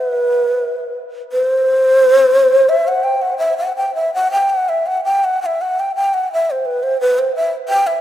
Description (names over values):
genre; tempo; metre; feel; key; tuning
japanese traditional, Japanese chamber music; 81-90 BPM; 2/4; rubato; E hirajoshi; A4 = 440 Hz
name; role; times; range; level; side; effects
breathy mellow long shakuhachi; solo; 0.0-8.0 s; B4 to G5; -13 LUFS; equal; none
room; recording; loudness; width
moderate cathedral reverb, RT60 5.0 s; none; -13 LUFS; side -12 dB against mid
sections
0.0-8.0 A section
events
none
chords
none